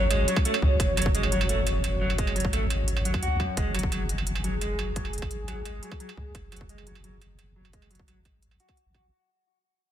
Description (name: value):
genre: half-time drum and bass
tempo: 173 BPM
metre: 4/4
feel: half-time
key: unclear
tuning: A4 = 441 Hz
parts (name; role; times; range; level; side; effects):
- dark analog pad; sustained chords; 0.0-9.1 s; F#4 to C#5; -33 LUFS; equal; chorus, sidechain pumping
- electric guitar at the edge of break-up; arpeggios; 0.0-9.0 s; F#2 to F#4; -32 LUFS; equal; low-pass filter, ping-pong delay
- deep soft wobble bass; bass; 0.0-9.1 s; F#1 to C#2; -28 LUFS; equal; chorus
- electronic hi-hat and struck metal; drums; 0.1-9.0 s; none; -33 LUFS; right 5 dB; studio reverb
- electronic kick drum; drums; 0.4-9.0 s; none; -28 LUFS; equal; overdrive, studio reverb
room: light reverb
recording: dense, heavily limited modern master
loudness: -24 LUFS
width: side -10 dB against mid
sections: 0.0-9.1 A section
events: fade-out 0.0-9.1; filter sweep on wobble bass 0.0-9.1; filter sweep on clean electric guitar 0.0-9.1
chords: 0.0 F#5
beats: 0.10 0.45 | 0.80 1.14 1.49 1.84 | 2.18 2.53 2.88 3.22 | 3.57 3.92 4.26 4.61 | 4.96 5.30 5.65 6.00 | 6.35 6.69 7.04 7.39 | 7.73 8.08 8.43 8.77